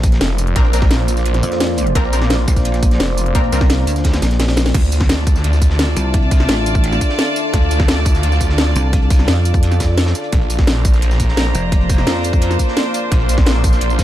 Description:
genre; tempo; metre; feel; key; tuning
dark technical drum and bass; 172 BPM; 4/4; straight; D minor; A4 = 439 Hz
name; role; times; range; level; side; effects
deep dark ambient pad; sustained chords; 0.0-14.0 s; Bb3 to F5; -23 LUFS; equal; chorus, built-in reverb, sidechain pumping
orchestra-hit-like synth stab; stabs; 0.0-3.6 s; C4 to Bb4; -26 LUFS; left 2 dB; built-in reverb, digital delay
pulsing pluck wobble bass; bass; 0.0-12.6 s; F1 to F2; -16 LUFS; equal; chorus
crunchy breakbeat drum kit; drums; 0.0-14.0 s; hi-hat, snare drum; -31 LUFS; equal; none
drum and bass drum kit; drums; 0.0-14.0 s; crash cymbal, hi-hat, snare drum, tambourine; -21 LUFS; equal; overdrive
electronic kick drum; drums; 0.0-14.0 s; none; -14 LUFS; equal; overdrive
snarling distorted saw bass; bass; 0.2-14.0 s; F1 to D2; -16 LUFS; equal; distortion, tube saturation, sidechain pumping
clear studio string section; texture; 4.7-14.0 s; D4 to C6; -24 LUFS; equal; sidechain pumping
room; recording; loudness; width
studio reverb; dark, warm production; -13 LUFS; side -13 dB against mid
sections
0.0-4.7 A section; 4.7-14.0 A section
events
drop 0.0-4.7, 4.7-14.0; drum fill 4.2-4.7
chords
0.0 Bbadd9; 4.7 Dm; 10.3 Bbadd9

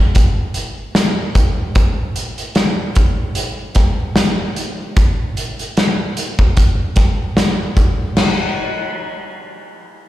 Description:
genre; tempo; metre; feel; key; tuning
indie pop; 75 BPM; 4/4; swing 55% on 16ths; none; none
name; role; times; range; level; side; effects
loose indie drum kit; drums; 0.1-8.4 s; crash cymbal, hi-hat, kick drum, snare drum; -15 LUFS; equal; none
room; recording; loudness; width
moderate plate reverb, RT60 3.6 s; live gig heard through the venue's PA, recital hall reverb; -14 LUFS; side -15 dB against mid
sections
0.0-8.2 A section; 8.2-10.1 B section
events
none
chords
none

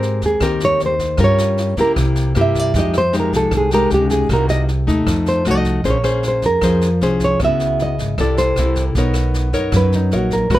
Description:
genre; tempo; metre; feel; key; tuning
bossa nova; 154 BPM; 4/4; straight; F minor, Bb minor from 5.9 s; A4 = 440 Hz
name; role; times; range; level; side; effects
nylon-string guitar; melody; 0.0-10.6 s; D#4 to E5; -18 LUFS; right 2 dB; none
nylon-string guitar; accompaniment; 0.0-10.6 s; C3 to C#5; -19 LUFS; left 3 dB; none
upright bass; bass; 0.0-10.6 s; Ab1 to Db3; -20 LUFS; right 1 dB; none
jazz brush drum kit; drums; 0.0-10.6 s; kick drum, rim click, snare drum; -25 LUFS; equal; none
room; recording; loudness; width
light reverb; none; -14 LUFS; side -15 dB against mid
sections
0.0-5.9 A section; 5.9-10.6 A section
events
nylon-string guitar solo 0.0-10.6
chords
0.0 Abmaj9; 1.2 Gm7b5; 2.0 C7; 2.7 Fm9; 4.3 Cm7b5; 5.1 F7b9; 5.9 Bbm9; 7.4 Dbm11; 8.2 C6; 9.0 Bmaj9

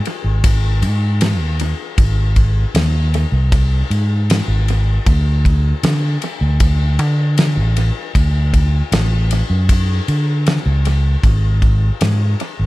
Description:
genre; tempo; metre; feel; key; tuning
psychedelic rock; 78 BPM; 4/4; straight; D lydian; A4 = 440 Hz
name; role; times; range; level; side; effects
damped 70s drum kit; drums; 0.1-12.6 s; kick drum, ride cymbal, snare drum; -18 LUFS; equal; dub echo
fingered electric bass; bass; 0.2-12.7 s; G#1 to D3; -15 LUFS; equal; none
room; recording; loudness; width
little or no reverb; echo-heavy mix; -13 LUFS; side -19 dB against mid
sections
0.0-12.7 A section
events
none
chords
none

